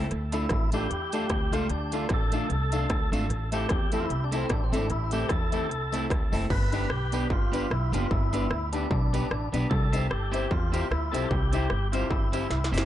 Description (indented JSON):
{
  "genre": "ska",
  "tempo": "150 BPM",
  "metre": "4/4",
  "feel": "swing 56% on 8ths",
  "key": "unclear",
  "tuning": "A4 = 440 Hz",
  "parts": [
    { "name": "electric guitar at the edge of break-up", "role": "accompaniment", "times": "0.0-12.9 s", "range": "A3 to C5", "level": "-34 LUFS", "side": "right 3 dB", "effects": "spring reverb, tape echo" },
    { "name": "dark upright piano", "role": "stabs", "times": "0.0-12.9 s", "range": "A3 to C5", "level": "-34 LUFS", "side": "left 5 dB", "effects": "tape echo" },
    { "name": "upright bass", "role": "bass", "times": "0.0-12.9 s", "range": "F#1 to E2", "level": "-29 LUFS", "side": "equal", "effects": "none" },
    { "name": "industrial drum kit", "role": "drums", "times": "0.1-12.9 s", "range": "crash cymbal, hi-hat, kick drum, rim click, snare drum", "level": "-29 LUFS", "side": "equal", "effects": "distortion, overdrive" },
    { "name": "tonewheel organ", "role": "melody", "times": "0.3-12.7 s", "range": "C4 to B4", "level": "-32 LUFS", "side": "equal", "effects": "overdrive, fast rotary speaker, tape echo" },
    { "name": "tambourine", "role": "percussion", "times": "0.3-12.8 s", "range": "none", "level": "-46 LUFS", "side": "right 5 dB", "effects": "none" }
  ],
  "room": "little or no reverb",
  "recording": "nothing above 10.6 kHz",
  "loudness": "-25 LUFS",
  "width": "side -12 dB against mid",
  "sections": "0.0-6.5 A section; 6.5-12.9 B section",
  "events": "drum fill 12.5-12.9",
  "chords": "0.1 Dm; 3.3 Am; 6.5 G; 9.7 C",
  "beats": "| 0.10 0.50 0.90 1.30 | 1.71 2.10 2.50 2.90 | 3.31 3.71 4.11 4.50 | 4.91 5.30 5.71 6.11 | 6.50 6.91 7.30 7.71 | 8.11 8.51 8.91 9.31 | 9.71 10.11 10.51 10.91 | 11.31 11.71 12.11 12.51"
}